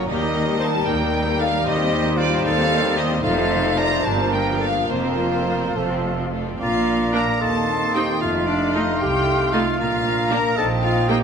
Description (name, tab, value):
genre	quick classical-period movement for symphony orchestra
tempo	75 BPM (dotted quarters)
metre	6/8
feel	rubato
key	unclear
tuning	A4 = 440 Hz
part	rich chamber violin section	melody	0.0-11.2 s	C5 to Bb5	-26 LUFS	left 1 dB	none
part	concert flute	second line	0.0-11.2 s	F4 to C6	-28 LUFS	left 2 dB	none
part	mellow clarinet	second line	0.0-11.2 s	C4 to Bb4	-26 LUFS	left 2 dB	none
part	mellow cor anglais	second line	0.0-11.2 s	A4 to F5	-29 LUFS	right 2 dB	none
part	rich chamber violin section	second line	0.0-11.2 s	A3 to Bb5	-30 LUFS	left 3 dB	none
part	clear bassoon	accompaniment	0.0-11.2 s	F3 to C4	-29 LUFS	right 3 dB	none
part	rich chamber viola section	accompaniment	0.0-11.2 s	Eb3 to Eb4	-28 LUFS	right 2 dB	none
part	dark French horn section	sustained chords	0.0-11.2 s	G3 to F4	-30 LUFS	left 3 dB	none
part	bright chamber double bass section	bass	0.1-11.2 s	F1 to Eb2	-27 LUFS	right 3 dB	none
part	clear chamber cello section	bass	0.1-11.2 s	C2 to Bb2	-27 LUFS	right 1 dB	none
room	moderate concert hall reverb, RT60 2.2 s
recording	none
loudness	-18 LUFS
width	side -6 dB against mid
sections	0.0-6.6 A section; 6.6-11.2 B section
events	none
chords	0.1 Eb; 1.6 Cm/Eb; 3.2 F7; 4.0 Gm7; 4.9 Fsus4; 5.8 F; 6.6 Bb; 7.4 Cm/Eb; 8.2 F7; 9.8 Bb; 10.6 Eb/Bb